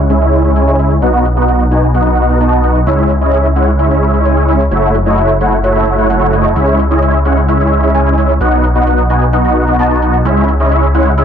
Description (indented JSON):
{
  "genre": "EDM, festival progressive house",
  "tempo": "130 BPM",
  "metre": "4/4",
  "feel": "straight",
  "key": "C# minor",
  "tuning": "A4 = 437 Hz",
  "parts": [
    { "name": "detuned saw bass", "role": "bass", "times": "0.0-11.2 s", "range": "F#1 to C#2", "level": "-13 LUFS", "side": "equal", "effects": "none" },
    { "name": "supersaw chords", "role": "riff", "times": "0.1-11.2 s", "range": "G#3 to A5", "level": "-11 LUFS", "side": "equal", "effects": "ensemble chorus, low-pass filter, ping-pong delay" },
    { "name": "electronic hi-hat", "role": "drums", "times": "0.1-11.2 s", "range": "none", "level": "-43 LUFS", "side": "left 2 dB", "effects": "low-pass filter on hats" }
  ],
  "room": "light reverb, digital ambience",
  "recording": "nothing above 7.8 kHz",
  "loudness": "-9 LUFS",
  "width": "side -8 dB against mid",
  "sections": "0.0-11.2 A section",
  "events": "none",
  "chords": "0.0 C#m; 1.0 B; 2.9 C#m; 4.7 F#m7; 6.6 C#m; 8.4 B; 10.3 C#m"
}